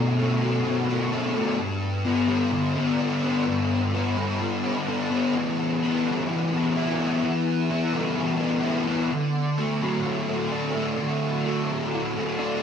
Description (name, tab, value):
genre	rock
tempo	128 BPM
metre	4/4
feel	straight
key	G major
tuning	A4 = 440 Hz
part	fuzz guitar	solo	0.0-12.6 s	G2 to E4	-22 LUFS	left 1 dB	distortion, ensemble chorus, slapback echo
room	moderate huge ambient reverb, RT60 4.5 s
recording	small room ambience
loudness	-22 LUFS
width	side -7 dB against mid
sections	0.0-12.6 A section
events	none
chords	0.0 Bm7; 1.6 G; 5.3 Em; 9.1 D